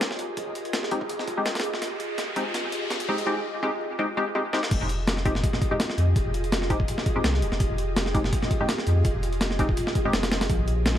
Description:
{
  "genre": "drum and bass, jungle",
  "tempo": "166 BPM",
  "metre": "4/4",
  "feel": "swing 54% on 16ths",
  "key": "F minor",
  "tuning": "A4 = 441 Hz",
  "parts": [
    { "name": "ethereal airy pad", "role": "sustained chords", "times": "0.0-11.0 s", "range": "F4 to Ab5", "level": "-31 LUFS", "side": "equal", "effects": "ensemble chorus, built-in reverb" },
    { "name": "filtered dub chord stab", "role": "stabs", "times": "0.0-10.2 s", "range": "Ab3 to G4", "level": "-29 LUFS", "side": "left 1 dB", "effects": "analog chorus, dub echo" },
    { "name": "breakbeat sampler-style drum kit", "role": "drums", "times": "0.0-11.0 s", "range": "crash cymbal, hi-hat, kick drum, snare drum", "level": "-26 LUFS", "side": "equal", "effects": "overdrive, high-pass filter on snare, high-pass filter on kick, high-pass filter on hats, high-pass filter on cymbals, high-pass filter on room" },
    { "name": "riser", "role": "sound effects", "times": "0.5-3.3 s", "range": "none", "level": "-36 LUFS", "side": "equal", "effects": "none" },
    { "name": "saturated sub bass", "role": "bass", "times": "4.7-11.0 s", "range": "Eb1 to F2", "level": "-26 LUFS", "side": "equal", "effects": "none" }
  ],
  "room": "light reverb",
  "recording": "vinyl crackle",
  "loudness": "-23 LUFS",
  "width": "side -11 dB against mid",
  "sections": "0.0-4.7 A section; 4.7-11.0 B section",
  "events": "build-up 0.0-4.7; riser 0.5-3.3; drum fill 1.8-3.3, 4.5; drop 4.7-11.0",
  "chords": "0.0 Fm9",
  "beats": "0.01 | 0.37 0.74 1.10 1.46 | 1.82 2.18 2.54 2.90 | 3.27 3.63 3.99 4.35 | 4.71 5.07 5.43 5.80 | 6.16 6.52 6.88 7.24 | 7.60 7.96 8.33 8.69 | 9.05 9.41 9.77 10.13 | 10.49 10.86"
}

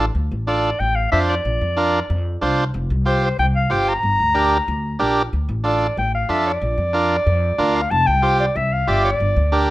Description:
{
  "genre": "latin",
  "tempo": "186 BPM",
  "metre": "4/4",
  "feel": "straight",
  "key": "D minor",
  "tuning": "A4 = 439 Hz",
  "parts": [
    { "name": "combo organ", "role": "accompaniment", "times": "0.0-9.7 s", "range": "D4 to D5", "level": "-20 LUFS", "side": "right 2 dB", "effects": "plate reverb" },
    { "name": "upright bass", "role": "bass", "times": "0.0-9.7 s", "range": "F1 to F2", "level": "-21 LUFS", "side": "equal", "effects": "none" },
    { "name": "clear clarinet", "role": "second line", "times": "0.5-9.6 s", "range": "C5 to Bb5", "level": "-20 LUFS", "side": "left 1 dB", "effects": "plate reverb" }
  ],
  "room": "moderate studio reverb, RT60 0.5 s",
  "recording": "rough home demo mix",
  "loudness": "-16 LUFS",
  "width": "side -16 dB against mid",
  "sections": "0.2-9.7 A section",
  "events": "clarinet solo 0.2-9.7",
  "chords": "0.2 Dm; 1.4 Bb; 2.7 Fsus2; 4.0 Gm; 5.3 Dm; 6.6 Bb; 7.9 Fsus2; 9.2 Gm",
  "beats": "| 0.15 0.48 0.80 1.12 | 1.45 1.77 2.09 2.42 | 2.74 3.06 3.39 3.71 | 4.03 4.36 4.68 5.00 | 5.33 5.65 5.97 6.29 | 6.62 6.94 7.26 7.59 | 7.91 8.23 8.55 8.88 | 9.20 9.52"
}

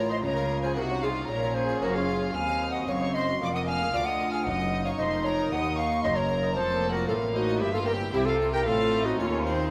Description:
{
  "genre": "classical, baroque-style concerto movement with solo episodes",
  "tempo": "114 BPM",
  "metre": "4/4",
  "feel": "straight",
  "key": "Bb minor",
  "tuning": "A4 = 440 Hz",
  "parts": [
    { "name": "hollow concert flute", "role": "melody", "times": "0.0-9.7 s", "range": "Eb4 to Ab5", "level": "-31 LUFS", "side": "equal", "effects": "none" },
    { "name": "rich chamber violin section", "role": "melody", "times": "0.0-9.7 s", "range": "C5 to F6", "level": "-37 LUFS", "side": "equal", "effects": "none" },
    { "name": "rich chamber violin section", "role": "second line", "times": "0.0-9.7 s", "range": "C4 to F5", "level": "-37 LUFS", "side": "equal", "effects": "none" },
    { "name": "dark chamber viola section", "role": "accompaniment", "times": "0.0-9.7 s", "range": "Bb3 to F4", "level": "-36 LUFS", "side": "equal", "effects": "none" },
    { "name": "harpsichord", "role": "accompaniment", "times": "0.0-9.7 s", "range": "D2 to C5", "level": "-38 LUFS", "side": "equal", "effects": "none" },
    { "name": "rich chamber cello section", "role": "bass", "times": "0.0-9.7 s", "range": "D2 to Db3", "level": "-36 LUFS", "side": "equal", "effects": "none" },
    { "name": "rich chamber double bass section", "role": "bass", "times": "0.0-9.7 s", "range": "F1 to Eb2", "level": "-36 LUFS", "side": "equal", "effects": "none" }
  ],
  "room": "wet scoring stage reverb, RT60 1.6 s",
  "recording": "none",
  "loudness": "-27 LUFS",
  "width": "mono",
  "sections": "0.0-9.7 A section",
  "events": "none",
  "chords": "0.2 Bbm; 2.3 Ebm; 3.4 Bb7/F; 4.5 Ebm; 6.6 F; 7.6 C7/G; 8.7 F/A",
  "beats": "| 0.23 0.76 1.29 1.82 | 2.35 2.88 3.41 3.93 | 4.46 4.99 5.52 6.04 | 6.57 7.09 7.61 8.14 | 8.67 9.20"
}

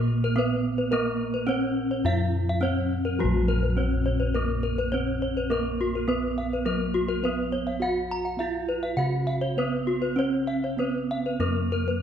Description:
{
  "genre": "Balinese gamelan",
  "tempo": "104 BPM",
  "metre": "4/4",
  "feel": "uneven beats",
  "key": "Bb pelog",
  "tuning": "A4 = 440 Hz",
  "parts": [
    { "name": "gamelan-type bronze metallophone", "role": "melody", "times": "0.0-12.0 s", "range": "Gb3-40c to Gb4-40c", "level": "-29 LUFS", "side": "right 3 dB", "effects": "none" },
    { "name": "gamelan-type bossed gongs", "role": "bass", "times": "0.0-12.0 s", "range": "Bb1 to Cb5", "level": "-28 LUFS", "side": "left 1 dB", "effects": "none" },
    { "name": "gamelan-type bronze metallophone", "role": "arpeggios", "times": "0.2-12.0 s", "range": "Gb4-40c to Bb5", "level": "-29 LUFS", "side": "left 2 dB", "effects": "none" }
  ],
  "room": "light reverb",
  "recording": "dark, warm production",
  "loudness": "-24 LUFS",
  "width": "side -8 dB against mid",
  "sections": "0.0-3.2 A section; 3.2-12.0 B section",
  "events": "none",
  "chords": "none",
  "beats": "0.36 | 0.92 1.49 2.05 2.62 | 3.20 3.77 4.35 4.92 | 5.50 6.08 6.65 7.23 | 7.80 8.38 8.97 9.57 | 10.17 10.79 11.41"
}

